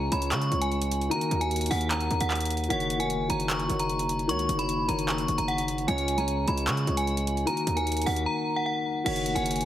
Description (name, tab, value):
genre	hip hop, trap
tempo	151 BPM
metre	4/4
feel	half-time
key	F# major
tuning	A4 = 440 Hz
part	metallic FM bell	melody	0.0-9.6 s	F#5 to C#6	-29 LUFS	equal	chorus, low-pass filter
part	dark baby grand piano	accompaniment	0.0-9.7 s	C#3 to C#5	-30 LUFS	left 2 dB	low-pass filter
part	distorted 808-style bass	bass	0.0-9.6 s	E#1 to C#3	-30 LUFS	right 1 dB	distortion
part	trap drum kit	drums	0.1-9.7 s	crash cymbal, handclaps, hi-hat	-33 LUFS	right 1 dB	overdrive
room	light reverb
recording	heavily compressed radio sound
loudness	-25 LUFS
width	side -12 dB against mid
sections	0.0-9.1 A section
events	none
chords	0.0 C#; 1.1 D#m; 2.7 F#6; 5.9 C#; 7.5 D#m; 9.1 F#6